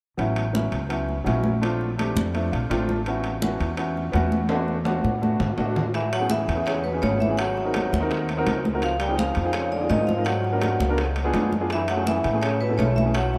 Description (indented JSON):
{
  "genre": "Afro-Cuban jazz",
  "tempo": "167 BPM",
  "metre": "4/4",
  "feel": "straight",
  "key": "A major",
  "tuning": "A4 = 440 Hz",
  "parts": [
    { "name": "warm baby grand piano", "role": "accompaniment", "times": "0.2-13.2 s", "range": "F#3 to A5", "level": "-29 LUFS", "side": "equal", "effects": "none" },
    { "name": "upright bass", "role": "bass", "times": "0.2-13.4 s", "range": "G#1 to A2", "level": "-29 LUFS", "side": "equal", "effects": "none" },
    { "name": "congas", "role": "percussion", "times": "0.2-13.4 s", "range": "none", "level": "-32 LUFS", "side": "equal", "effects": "none" },
    { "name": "timbales", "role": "percussion", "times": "0.2-13.3 s", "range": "none", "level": "-35 LUFS", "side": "equal", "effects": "none" },
    { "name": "bright trombone", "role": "second line", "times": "5.9-13.4 s", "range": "B2 to G3", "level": "-33 LUFS", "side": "equal", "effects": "none" },
    { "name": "bongos", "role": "percussion", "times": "5.9-13.4 s", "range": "none", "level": "-38 LUFS", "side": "equal", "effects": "none" },
    { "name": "vibraphone with medium hard mallets", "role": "melody", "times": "6.0-13.4 s", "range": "B4 to G5", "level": "-30 LUFS", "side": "equal", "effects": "none" }
  ],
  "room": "moderate huge ambient reverb, RT60 8.3 s",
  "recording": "in a vast, echoing space",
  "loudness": "-24 LUFS",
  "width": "mono",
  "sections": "0.2-5.9 A section; 5.9-13.4 B section",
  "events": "grand piano fill 2.0-3.1; drum fill 4.5-5.9",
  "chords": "0.2 A69; 1.6 Bbmaj9; 3.1 A69; 4.5 E9sus4; 5.9 Amaj9; 7.4 G#9; 8.8 C#maj9; 10.3 G#m7b5; 11.0 C#7b9; 11.7 F#m7",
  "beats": "| 0.19 0.55 0.91 1.27 | 1.63 1.99 2.35 2.71 | 3.07 3.43 3.79 4.15 | 4.51 4.87 5.23 5.59 | 5.95 6.30 6.67 7.03 | 7.38 7.74 8.10 8.46 | 8.82 9.18 9.54 9.90 | 10.27 10.62 10.98 11.35 | 11.71 12.07 12.43 12.79 | 13.15"
}